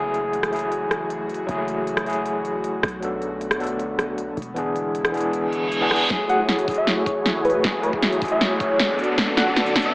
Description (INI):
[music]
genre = future bass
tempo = 156 BPM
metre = 4/4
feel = half-time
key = F# minor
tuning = A4 = 441 Hz
[part]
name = overdriven tine electric piano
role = accompaniment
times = 0.0-9.9 s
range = E3 to A4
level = -24 LUFS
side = left 1 dB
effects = fast tremolo, sidechain pumping, dub echo
[part]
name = airy breathy pad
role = sustained chords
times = 0.0-9.9 s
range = D3 to G#4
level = -32 LUFS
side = equal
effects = chorus, sidechain pumping
[part]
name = warm 808-style bass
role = bass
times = 0.0-9.9 s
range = E1 to B1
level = -39 LUFS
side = equal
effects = sidechain pumping, high-pass filter
[part]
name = big-room dance drum kit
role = drums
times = 0.1-9.9 s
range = hi-hat, rim click, snare drum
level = -23 LUFS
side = equal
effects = overdrive, small room ambience
[part]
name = reverse cymbal and riser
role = sound effects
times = 5.5-9.9 s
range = none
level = -27 LUFS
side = right 1 dB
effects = none
[part]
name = supersaw chords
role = riff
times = 6.1-9.9 s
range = A3 to D5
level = -24 LUFS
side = equal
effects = sidechain pumping, low-pass filter
[part]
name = electronic kick drum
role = drums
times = 6.1-9.8 s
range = none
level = -32 LUFS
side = equal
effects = small room ambience
[part]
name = soft struck synth lead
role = melody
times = 6.3-9.9 s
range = B4 to F#5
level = -24 LUFS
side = equal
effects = chorus, sidechain pumping
[sound]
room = moderate digital room reverb, RT60 1.0 s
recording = high-pass filter, AM radio sound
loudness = -20 LUFS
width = side -23 dB against mid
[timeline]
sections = 0.0-6.1 A section; 6.1-9.9 B section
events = reverse cymbal 5.5-6.1; build-up 6.1-9.9; drum fill 6.1-9.9; riser 6.1-9.9; filter sweep on supersaw synth 6.1-9.9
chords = 0.0 F#m9; 2.8 Bm7; 4.4 E7; 6.1 F#m9; 9.0 Bm7